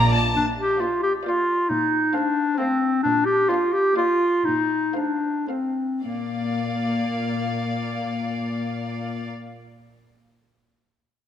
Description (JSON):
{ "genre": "quick classical-period movement for symphony orchestra", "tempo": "105-135 BPM", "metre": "3/4", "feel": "straight", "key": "Bb major", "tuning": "A4 = 440 Hz", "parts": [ { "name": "warm chamber violin section", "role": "melody", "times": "0.0-9.3 s", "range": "F5 to Bb5", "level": "-29 LUFS", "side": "left 2 dB", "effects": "none" }, { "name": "warm chamber violin section", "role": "second line", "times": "0.0-9.3 s", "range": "C5 to D5", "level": "-36 LUFS", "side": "left 2 dB", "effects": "none" }, { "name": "dark chamber cello section", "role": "bass", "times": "0.0-9.3 s", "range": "Bb2", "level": "-29 LUFS", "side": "right 2 dB", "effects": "none" }, { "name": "bright clarinet", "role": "second line", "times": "0.4-9.3 s", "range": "Bb3 to G4", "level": "-22 LUFS", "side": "left 1 dB", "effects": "none" }, { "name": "dark symphonic viola section", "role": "accompaniment", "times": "0.8-9.3 s", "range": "A3 to Bb3", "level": "-37 LUFS", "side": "right 2 dB", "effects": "none" } ], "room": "wet scoring stage reverb, RT60 1.7 s", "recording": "none", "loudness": "-21 LUFS", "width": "side -9 dB against mid", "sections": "0.4-6.0 A section; 6.0-9.4 B section", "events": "slowing down 2.4-6.0", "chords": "0.4 Bb; 1.7 F7/Bb; 3.0 Bb; 4.4 F7/Bb; 6.0 Bb" }